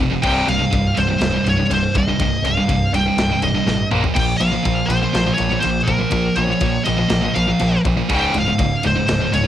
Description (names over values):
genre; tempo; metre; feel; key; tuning
heavy metal; 122 BPM; 4/4; straight; C phrygian; A4 = 440 Hz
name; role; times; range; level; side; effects
scooped high-gain guitar; riff; 0.0-9.5 s; C2 to Bb3; -20 LUFS; right 5 dB; distortion, cassette tape
tight distorted guitar; riff; 0.0-9.4 s; C2 to Bb3; -23 LUFS; left 8 dB; distortion, cassette tape
growling picked electric bass; bass; 0.0-9.5 s; C1 to Bb1; -24 LUFS; equal; overdrive
smooth overdriven lead guitar; melody; 0.2-9.5 s; Bb4 to G5; -21 LUFS; equal; cassette tape
tight metal drum kit; drums; 0.2-9.4 s; crash cymbal, kick drum, ride cymbal, snare drum, splash cymbal, toms; -25 LUFS; equal; cassette tape
room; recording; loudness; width
little or no reverb; home recording on cassette; -15 LUFS; side -11 dB against mid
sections
0.0-9.5 A section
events
half time 0.0-9.5; drum fill 3.7-4.2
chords
0.2 Cm; 3.9 Bb5; 8.1 Db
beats
| 0.24 0.73 1.22 1.71 | 2.20 2.69 3.18 3.67 | 4.16 4.65 5.14 5.63 | 6.12 6.62 7.11 7.60 | 8.10 8.59 9.08